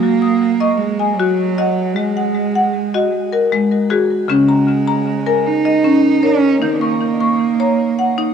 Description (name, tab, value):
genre	world meditative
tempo	77 BPM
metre	3/4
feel	straight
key	F# major pentatonic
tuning	A4 = 439 Hz
part	warm cello	melody	0.0-8.3 s	F#3 to D#4	-17 LUFS	right 6 dB	cassette tape, shimmer reverb, tape echo
part	marimba with hard mallets	arpeggios	0.0-8.3 s	C#3 to D#6	-16 LUFS	left 3 dB	cassette tape, shimmer reverb, tape echo
room	wet booth ambience, RT60 0.3 s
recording	home recording on cassette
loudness	-13 LUFS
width	side -7 dB against mid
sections	0.0-8.3 A section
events	none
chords	0.0 F#; 2.0 G#5; 4.3 C#5; 6.6 D#m